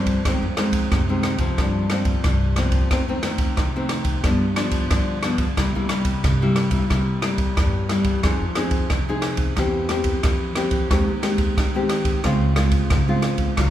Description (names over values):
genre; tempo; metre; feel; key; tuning
samba and choro; 90 BPM; 4/4; straight; F minor; A4 = 440 Hz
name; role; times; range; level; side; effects
nylon-string guitar; accompaniment; 0.0-13.7 s; F2 to Ab4; -23 LUFS; left 1 dB; none
upright bass; bass; 0.0-13.7 s; C2 to G3; -25 LUFS; equal; none
open jazz drum kit; drums; 0.1-13.7 s; kick drum, ride cymbal, rim click; -22 LUFS; equal; none
room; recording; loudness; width
moderate scoring stage reverb, RT60 1.8 s; recorded in a church or concert hall; -18 LUFS; side -12 dB against mid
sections
0.0-13.7 A section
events
none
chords
0.2 Fm7; 1.6 C7sus4/G; 2.9 F7; 4.2 G7; 5.6 C7; 8.2 Fm7; 9.6 C7/E; 10.9 Abmaj7/Eb; 12.2 Dbmaj7